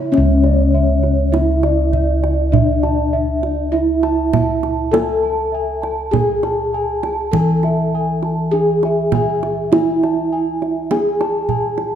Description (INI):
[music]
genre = Javanese gamelan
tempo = 50 BPM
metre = 4/4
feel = straight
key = C# pelog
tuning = A4 = 439 Hz
[part]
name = gamelan-type bronze metallophone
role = melody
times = 0.0-12.0 s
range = C#4 to A4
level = -19 LUFS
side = equal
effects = none
[part]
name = gamelan-type bossed gongs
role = arpeggios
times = 0.0-11.8 s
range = C#5 to A5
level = -24 LUFS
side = left 2 dB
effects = none
[part]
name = gamelan-type bronze metallophone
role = arpeggios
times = 0.0-12.0 s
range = C#5 to A5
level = -26 LUFS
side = right 6 dB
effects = none
[part]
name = gamelan-type bossed gongs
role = bass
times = 0.0-12.0 s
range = C#2 to A4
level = -19 LUFS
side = left 1 dB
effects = none
[part]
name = kendang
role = percussion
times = 0.1-11.9 s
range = none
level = -22 LUFS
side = right 5 dB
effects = none
[sound]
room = moderate recital hall reverb, RT60 1.7 s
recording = dark, warm production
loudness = -14 LUFS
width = side -9 dB against mid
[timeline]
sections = 0.1-12.0 A section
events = none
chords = none